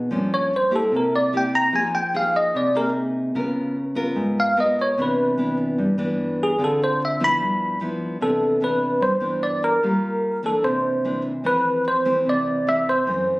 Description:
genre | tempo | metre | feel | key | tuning
bossa nova | 148 BPM | 4/4 | straight | C major | A4 = 437 Hz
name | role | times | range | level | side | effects
nylon-string guitar | accompaniment | 0.0-13.4 s | F2 to Bb4 | -24 LUFS | equal | none
bell-like tine electric piano | melody | 0.3-13.4 s | Ab4 to B5 | -20 LUFS | equal | analog chorus
room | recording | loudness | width
moderate large studio reverb, RT60 0.8 s | recorded on a phone in the room, club reverb | -19 LUFS | side -22 dB against mid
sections
0.0-8.2 A section; 8.2-13.4 B section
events
tine electric piano solo 0.0-8.2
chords
0.1 Gm7b5; 0.9 C7; 1.7 Fm7; 3.4 Db6; 5.0 Cmaj9; 6.6 Dm7; 7.4 G6; 8.2 Cmaj9; 9.8 Gm7; 10.6 C9; 11.5 Fmaj7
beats
| 0.11 0.52 0.92 1.33 | 1.73 2.14 2.54 2.95 | 3.35 3.76 4.16 4.57 | 4.97 5.38 5.78 6.19 | 6.59 7.00 7.40 7.81 | 8.21 8.62 9.02 9.43 | 9.83 10.24 10.64 11.05 | 11.45 11.86 12.26 12.67 | 13.07

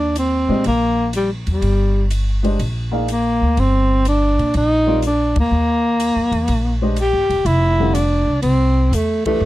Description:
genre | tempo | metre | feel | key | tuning
modal jazz | 123 BPM | 4/4 | swing 68% on 8ths | Eb major | A4 = 440 Hz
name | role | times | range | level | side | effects
breathy tenor saxophone | melody | 0.0-9.5 s | G3 to G4 | -17 LUFS | equal | none
upright bass | bass | 0.0-9.5 s | Fb1 to Bb2 | -18 LUFS | equal | none
compact cocktail drum kit | drums | 0.2-9.3 s | hi-hat, kick drum, ride cymbal | -33 LUFS | equal | none
dark upright piano | accompaniment | 0.5-9.4 s | D3 to F5 | -20 LUFS | left 1 dB | none
room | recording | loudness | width
little or no reverb | none | -15 LUFS | side -16 dB against mid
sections
0.0-9.5 A section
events
band accent 5.3, 9.2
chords
0.0 Ebmaj7; 7.5 Fmaj9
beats
0.16 0.65 1.13 | 1.62 2.11 2.60 3.08 | 3.57 4.05 4.54 5.03 | 5.52 6.00 6.49 6.98 | 7.46 7.95 8.44 8.93 | 9.41

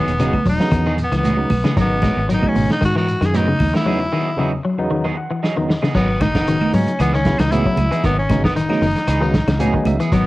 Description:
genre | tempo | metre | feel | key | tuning
afrobeat | 115 BPM | 4/4 | swing 54% on 16ths | G# minor | A4 = 440 Hz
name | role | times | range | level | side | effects
raspy tenor saxophone | melody | 0.0-10.3 s | B3 to G#4 | -22 LUFS | left 1 dB | cassette tape
semi-hollow electric guitar | arpeggios | 0.0-10.3 s | B2 to G#3 | -22 LUFS | left 3 dB | cassette tape
electric guitar at the edge of break-up | stabs | 0.0-10.3 s | E3 to A#4 | -28 LUFS | right 4 dB | cassette tape
fingered electric bass | bass | 0.0-10.3 s | E1 to G#2 | -21 LUFS | equal | none
vintage drum kit | drums | 0.1-10.3 s | crash cymbal, hi-hat, kick drum, snare drum | -22 LUFS | equal | cassette tape
shekere | percussion | 0.1-10.3 s | none | -32 LUFS | right 1 dB | none
barky tine electric piano | accompaniment | 0.2-10.1 s | E2 to G#5 | -24 LUFS | right 1 dB | overdrive, fast stereo tremolo, cassette tape
congas | percussion | 0.2-10.3 s | none | -24 LUFS | right 4 dB | none
claves | percussion | 0.3-10.0 s | none | -38 LUFS | left 2 dB | none
room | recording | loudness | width
small room ambience | home recording on cassette | -15 LUFS | side -18 dB against mid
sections
0.0-5.9 A section; 5.9-10.3 B section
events
break 3.9-5.9; tine electric piano fill 4.9-5.9, 9.3-10.1; drum fill 5.4-5.9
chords
0.0 Emaj9; 1.8 G#m9; 3.9 Emaj9; 5.9 G#m9; 7.0 C#m9; 8.0 G#m9; 9.1 C#m9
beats
0.19 0.72 1.24 | 1.76 2.29 2.81 3.33 | 3.85 4.38 4.90 5.42 | 5.95 6.47 6.99 7.51 | 8.03 8.55 9.08 9.60 | 10.12

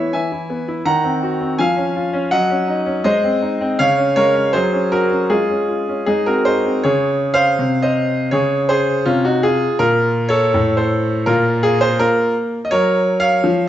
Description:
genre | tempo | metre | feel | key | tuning
classical-period piano sonatina | 82 BPM | 2/4 | straight | Db major | A4 = 439 Hz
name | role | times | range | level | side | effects
warm baby grand piano | solo | 0.0-13.7 s | A2 to Bb5 | -14 LUFS | equal | none
room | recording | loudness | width
moderate recital hall reverb, RT60 1.5 s | nothing above 7.8 kHz | -14 LUFS | side -11 dB against mid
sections
0.0-6.8 A section; 6.8-13.7 B section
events
none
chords
0.0 E; 0.9 Ebm6; 1.6 Db/F; 2.3 Ebm7/Gb; 3.1 Ab; 3.8 Db; 4.5 Gb; 5.3 Db/Ab; 6.1 Ab; 6.8 Db5; 7.6 N.C.; 8.3 Db; 9.8 Bb5; 10.5 N.C.; 11.2 Bb5; 12.7 Gb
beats
0.13 | 0.86 1.59 | 2.32 3.05 | 3.79 4.54 | 5.30 6.06 | 6.83 7.58 | 8.32 9.05 | 9.79 10.52 | 11.25 11.98 | 12.70 13.43

